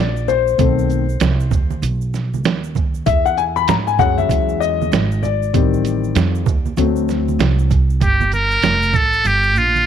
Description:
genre	hip hop, jazz-hop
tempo	97 BPM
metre	4/4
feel	swing 61% on 16ths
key	unclear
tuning	A4 = 440 Hz
part	dark grand piano	accompaniment	0.0-7.7 s	D#3 to B5	-18 LUFS	left 11 dB	none
part	upright bass	bass	0.0-9.9 s	F1 to G#2	-19 LUFS	right 2 dB	none
part	egg shaker and congas	percussion	0.2-9.9 s	none	-29 LUFS	right 10 dB	none
part	lo-fi sampler-style drum kit	drums	0.3-9.7 s	hi-hat, kick drum, shaker, snare drum	-19 LUFS	right 5 dB	none
part	trumpet with metal mute	melody	8.0-9.9 s	F4 to Bb4	-15 LUFS	right 1 dB	none
room	light reverb, small room ambience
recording	1960s-style stereo with parts hard left and right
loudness	-14 LUFS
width	side -9 dB against mid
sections	0.0-8.0 A section; 8.0-9.9 B section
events	grand piano solo 0.0-8.0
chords	0.0 Gmadd11 (rootless); 0.6 B7b9; 3.1 E69; 5.5 Am7b5; 6.8 D7; 8.0 Gm7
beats	| 0.59 1.21 1.83 2.45 | 3.06 3.68 4.30 4.92 | 5.54 6.16 6.78 7.39 | 8.01 8.63 9.25

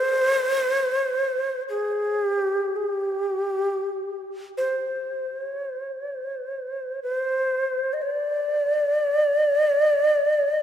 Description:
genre	japanese traditional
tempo	free time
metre	none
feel	none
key	unclear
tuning	A4 = 440 Hz
part	breathy shakuhachi	solo	0.0-10.6 s	G4 to Eb5	-22 LUFS	equal	none
room	wet cathedral reverb, RT60 4.0 s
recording	none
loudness	-22 LUFS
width	side -9 dB against mid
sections	0.0-10.6 A section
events	none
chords	none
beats	free time

